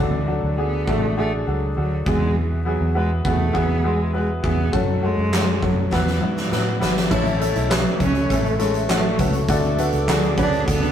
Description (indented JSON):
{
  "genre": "piano-driven pop",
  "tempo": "101 BPM",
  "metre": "4/4",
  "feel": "straight",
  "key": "A major",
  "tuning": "A4 = 440 Hz",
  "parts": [
    { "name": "rich cello", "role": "melody", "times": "0.0-10.9 s", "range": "E3 to D4", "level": "-26 LUFS", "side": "right 1 dB", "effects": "none" },
    { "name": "bright upright piano", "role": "accompaniment", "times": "0.0-10.9 s", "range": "A2 to B4", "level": "-24 LUFS", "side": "left 2 dB", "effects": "none" },
    { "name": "vintage muted fingered electric bass", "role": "bass", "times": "0.0-10.9 s", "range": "G#1 to A2", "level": "-23 LUFS", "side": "equal", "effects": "none" },
    { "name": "huge arena drum kit", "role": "drums", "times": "0.9-10.9 s", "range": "crash cymbal, handclaps, hi-hat, kick drum, snare drum", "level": "-23 LUFS", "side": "equal", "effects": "none" },
    { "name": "glassy FM pad", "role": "sustained chords", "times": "7.1-10.9 s", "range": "A4 to D6", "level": "-30 LUFS", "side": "right 2 dB", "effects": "ensemble chorus, built-in reverb" },
    { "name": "picked plugged-in steel-string acoustic guitar", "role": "riff", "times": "7.1-10.9 s", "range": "A3 to E4", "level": "-28 LUFS", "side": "right 2 dB", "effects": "none" }
  ],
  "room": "moderate stone room reverb, RT60 1.2 s",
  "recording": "rough rehearsal-room recording",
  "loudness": "-18 LUFS",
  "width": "side -9 dB against mid",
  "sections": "0.0-7.1 A section; 7.1-10.9 B section",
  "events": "drum fill 5.9-7.1",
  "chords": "0.0 D; 2.1 Eadd9; 4.7 F#m; 5.9 Esus2; 7.1 A; 9.5 D",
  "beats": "0.58 1.17 1.77 | 2.36 2.96 3.55 4.14 | 4.74 5.33 5.92 6.52 | 7.11 7.71 8.30 8.89 | 9.49 10.08 10.68"
}